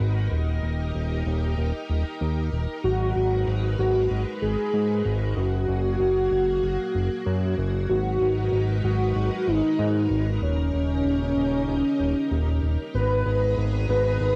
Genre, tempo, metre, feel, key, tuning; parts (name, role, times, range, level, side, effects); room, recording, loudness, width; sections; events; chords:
synthwave; 95 BPM; 4/4; straight; G# minor; A4 = 443 Hz
string machine, full ensemble; sustained chords; 0.0-14.4 s; G#3 to A#5; -36 LUFS; equal; ensemble chorus, cassette tape
fat analog bass; bass; 0.0-14.4 s; D#1 to G#2; -27 LUFS; equal
unison lead; melody; 2.8-14.4 s; C#4 to B4; -27 LUFS; equal; cassette tape, analog delay
light reverb; home recording on cassette; -24 LUFS; mono
0.0-12.9 A section; 12.9-14.4 B section
0.3 D#; 2.8 G#m7; 5.4 F#add9; 7.9 G#m7; 10.4 D#; 12.9 G#madd9